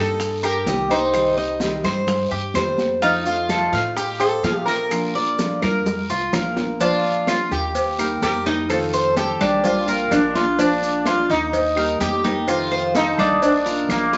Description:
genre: latin, Cuban son and guajira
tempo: 127 BPM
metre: 4/4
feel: straight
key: Bb major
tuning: A4 = 440 Hz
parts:
  - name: sitar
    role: melody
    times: 0.0-14.2 s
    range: Bb3 to Bb4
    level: -24 LUFS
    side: equal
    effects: none
  - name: nylon-string guitar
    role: accompaniment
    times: 0.0-14.2 s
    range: C3 to G4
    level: -30 LUFS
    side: equal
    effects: none
  - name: Cuban tres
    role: arpeggios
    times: 0.0-14.2 s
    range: D4 to F5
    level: -24 LUFS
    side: equal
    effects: none
  - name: upright bass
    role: bass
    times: 0.0-14.2 s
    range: Bb1 to Bb2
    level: -35 LUFS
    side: equal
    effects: none
  - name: bongos and cowbell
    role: percussion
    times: 0.2-14.2 s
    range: none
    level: -31 LUFS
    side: equal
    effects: none
  - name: congas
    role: percussion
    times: 0.2-14.1 s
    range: none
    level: -30 LUFS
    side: equal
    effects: none
  - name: guiro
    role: percussion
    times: 0.2-14.2 s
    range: none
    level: -37 LUFS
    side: equal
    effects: none
  - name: maracas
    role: percussion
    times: 0.2-14.2 s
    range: none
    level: -40 LUFS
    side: equal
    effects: none
  - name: claves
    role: percussion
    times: 0.4-14.1 s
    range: none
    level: -35 LUFS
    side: equal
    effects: none
room: wet studio reverb, RT60 0.6 s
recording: vinyl crackle, nothing above 7.9 kHz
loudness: -20 LUFS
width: mono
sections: 0.0-6.8 A section; 6.8-14.2 B section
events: drum fill 5.9-6.8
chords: 0.0 Eb; 1.1 Cm; 3.0 F; 4.9 Bb; 7.8 Eb; 8.7 F7; 9.6 Bb; 11.5 Eb; 12.5 F7; 13.4 Bb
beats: 0.20 0.67 | 1.14 1.61 2.08 2.56 | 3.03 3.50 3.97 4.44 | 4.92 5.39 5.86 6.33 | 6.81 7.28 7.75 8.23 | 8.70 9.17 9.65 10.12 | 10.59 11.06 11.54 12.01 | 12.48 12.96 13.43 13.90

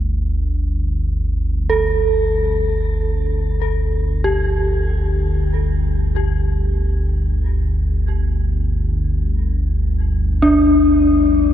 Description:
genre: dark ambient drone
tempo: free time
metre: none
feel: none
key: unclear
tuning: A4 = 440 Hz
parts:
  - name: deep rumbling drone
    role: drone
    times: 0.0-11.5 s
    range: G1 to D2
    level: -17 LUFS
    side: equal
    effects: built-in reverb, analog chorus
  - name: dark detuned synth bell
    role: arpeggios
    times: 1.7-11.5 s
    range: D4 to A4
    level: -18 LUFS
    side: left 1 dB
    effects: chorus, tremolo, ping-pong delay, shimmer reverb
room: wet huge ambient reverb, RT60 7.6 s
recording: dreamy mix soaked in reverb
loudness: -16 LUFS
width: side -10 dB against mid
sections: 0.0-11.5 A section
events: none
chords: 0.0 Gsus2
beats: free time

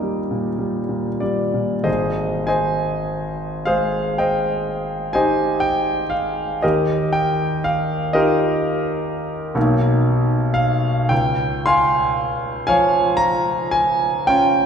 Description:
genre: classical, impressionist solo piano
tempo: 31-43 BPM (dotted quarters)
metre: 9/8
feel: rubato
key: Ab major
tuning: A4 = 441 Hz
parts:
  - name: clear concert grand piano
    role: solo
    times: 0.0-14.7 s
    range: Ab1 to D7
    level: -17 LUFS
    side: equal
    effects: none
room: wet church reverb, RT60 3.5 s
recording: recorded in a church or concert hall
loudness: -17 LUFS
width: side -7 dB against mid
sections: 0.0-1.9 A section; 1.9-14.7 B section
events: none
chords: 0.0 Ebmaj7; 1.9 Abmaj7; 6.6 Ebadd9; 9.6 Bmaj7; 11.1 Dbmaj7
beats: 0.04 | 1.87 3.68 5.15 | 6.63 8.14 9.56 | 11.11 12.67 14.29

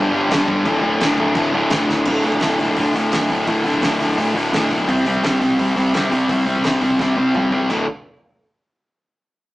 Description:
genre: punk rock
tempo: 170 BPM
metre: 4/4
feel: straight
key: unclear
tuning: A4 = 439 Hz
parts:
  - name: overdriven electric guitar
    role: riff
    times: 0.0-7.9 s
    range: D2 to C4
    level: -17 LUFS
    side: left 1 dB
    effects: none
  - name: sludgy distorted guitar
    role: riff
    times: 0.0-7.9 s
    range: D2 to C4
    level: -23 LUFS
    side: right 3 dB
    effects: overdrive
  - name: picked electric bass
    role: bass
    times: 0.0-7.9 s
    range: D1 to C2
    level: -30 LUFS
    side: equal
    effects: none
  - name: loose indie drum kit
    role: drums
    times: 0.3-7.8 s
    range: crash cymbal, hi-hat, kick drum, snare drum, toms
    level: -24 LUFS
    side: equal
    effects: none
room: light reverb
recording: rough rehearsal-room recording, small speaker sound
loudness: -15 LUFS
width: side -17 dB against mid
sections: 0.0-2.1 A section; 2.1-7.7 B section; 7.7-9.1 C section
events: drum fill 1.9, 7.0-7.7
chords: 0.0 G5; 0.7 D5; 4.9 C5; 7.7 D5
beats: 0.30 | 0.66 1.00 1.36 1.71 | 2.06 2.41 2.76 3.11 | 3.46 3.82 4.17 4.52 | 4.88 5.23 5.58 5.94 | 6.29 6.64 7.00 7.35 | 7.71

